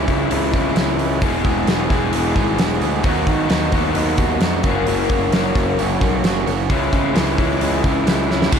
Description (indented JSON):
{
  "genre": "classic rock",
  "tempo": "131 BPM",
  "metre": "4/4",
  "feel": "straight",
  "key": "unclear",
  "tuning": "A4 = 440 Hz",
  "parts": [
    { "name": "overdriven electric guitar", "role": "riff", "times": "0.0-8.6 s", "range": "E2 to G#4", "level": "-22 LUFS", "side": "right 12 dB", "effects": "none" },
    { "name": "raw garage guitar", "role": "riff", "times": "0.0-8.6 s", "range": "E2 to E4", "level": "-22 LUFS", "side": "left 15 dB", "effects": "overdrive" },
    { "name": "fuzz picked electric bass", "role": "bass", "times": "0.0-8.6 s", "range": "E1 to D#3", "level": "-22 LUFS", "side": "equal", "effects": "overdrive" },
    { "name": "big rock drum kit", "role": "drums", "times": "0.1-8.6 s", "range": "crash cymbal, hi-hat, kick drum, snare drum", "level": "-20 LUFS", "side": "equal", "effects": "none" }
  ],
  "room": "light reverb",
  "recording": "none",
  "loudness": "-16 LUFS",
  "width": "side -7 dB against mid",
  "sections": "0.0-8.5 A section",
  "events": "drum fill 8.3",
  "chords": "0.0 C#m; 1.2 E; 3.0 B/D#; 4.6 F#; 6.7 C#m",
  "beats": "0.31 0.76 | 1.22 1.68 2.13 2.59 | 3.05 3.50 3.96 4.42 | 4.88 5.33 5.79 6.24 | 6.70 7.16 7.61 8.07 | 8.52"
}